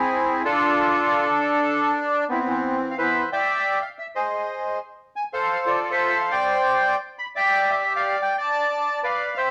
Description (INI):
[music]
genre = tango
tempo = 179 BPM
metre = 3/4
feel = rubato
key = C major from 3.3 s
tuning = A4 = 440 Hz
[part]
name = bandoneon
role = solo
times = 0.0-9.5 s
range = E3 to B5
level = -22 LUFS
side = equal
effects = none
[sound]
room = wet studio reverb, RT60 0.8 s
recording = none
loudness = -22 LUFS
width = mono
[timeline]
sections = 0.0-3.3 A section; 3.3-9.5 B section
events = none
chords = 0.3 Dm; 1.3 N.C.; 2.3 Cmaj7/E; 3.3 Cadd9; 4.3 Ab; 5.3 F; 6.3 Gsus4; 7.0 N.C.; 7.3 Em7; 8.4 Bm7b5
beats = | 0.29 0.62 0.96 | 1.29 1.62 1.95 | 2.29 2.62 2.96 | 3.30 3.64 3.98 | 4.32 4.66 4.99 | 5.32 5.66 5.99 | 6.33 6.66 7.00 | 7.34 7.68 8.02 | 8.36 8.69 9.03 | 9.36